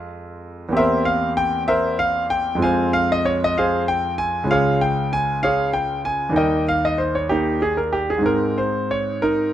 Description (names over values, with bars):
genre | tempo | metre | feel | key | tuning
classical, baroque-style suite movement for grand piano | 64 BPM (dotted quarters) | 12/8 | rubato | F minor | A4 = 440 Hz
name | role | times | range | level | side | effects
clear concert grand piano | solo | 0.0-9.5 s | Db2 to Ab5 | -18 LUFS | equal | none
room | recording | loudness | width
light reverb | close, detailed microphones | -18 LUFS | side -11 dB against mid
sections
0.0-9.5 A section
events
none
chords
0.0 Fm; 0.7 C7/E; 2.6 Fm; 4.5 Db; 6.4 Eb; 8.3 Ab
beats
| 0.74 1.66 2.60 3.54 | 4.48 5.42 6.36 7.30 | 8.26 9.21